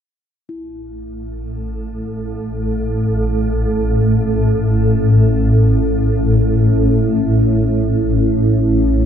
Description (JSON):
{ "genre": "ambient", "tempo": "free time", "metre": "none", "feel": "none", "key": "unclear", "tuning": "A4 = 440 Hz", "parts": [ { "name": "swarming drone", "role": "drone", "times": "1.5-9.1 s", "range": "A1 to A2", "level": "-14 LUFS", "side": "equal", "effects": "built-in reverb" }, { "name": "bronze singing bowl", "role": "texture", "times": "0.5-9.1 s", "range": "E4", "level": "-35 LUFS", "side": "equal", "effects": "shimmer reverb" } ], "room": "moderate plate reverb, RT60 3.6 s", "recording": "none", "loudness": "-13 LUFS", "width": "side -8 dB against mid", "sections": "0.5-9.1 A section", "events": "fade-in on singing bowl 0.5-9.1", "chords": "0.5 A5", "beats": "free time" }